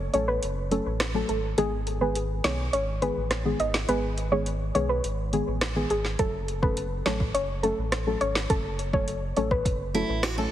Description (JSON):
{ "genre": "dancehall", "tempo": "104 BPM", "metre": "4/4", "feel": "straight", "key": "F# dorian", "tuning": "A4 = 440 Hz", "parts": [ { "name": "sub bass with octave", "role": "bass", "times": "0.0-10.5 s", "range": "F#1 to B1", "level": "-31 LUFS", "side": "equal", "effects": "none" }, { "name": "soft round pluck", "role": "melody", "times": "0.1-9.6 s", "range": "G#4 to D#5", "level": "-29 LUFS", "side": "equal", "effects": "chorus, ping-pong delay" }, { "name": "deep mellow chord stab", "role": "accompaniment", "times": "0.1-10.5 s", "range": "D#3 to A4", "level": "-30 LUFS", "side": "left 2 dB", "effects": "chorus, sidechain pumping" }, { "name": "afro-pop drum kit", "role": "drums", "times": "0.1-10.4 s", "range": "hi-hat, kick drum, rim click, snare drum", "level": "-30 LUFS", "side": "equal", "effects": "none" }, { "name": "picked steel-string acoustic guitar", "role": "arpeggios", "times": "9.9-10.5 s", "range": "E4 to A4", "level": "-29 LUFS", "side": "right 4 dB", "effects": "none" } ], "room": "light reverb", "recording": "heavily compressed radio sound", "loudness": "-24 LUFS", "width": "side -12 dB against mid", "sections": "0.0-10.5 A section", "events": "break 0.0-6.2", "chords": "0.0 F#m; 1.6 G#m; 6.2 F#m" }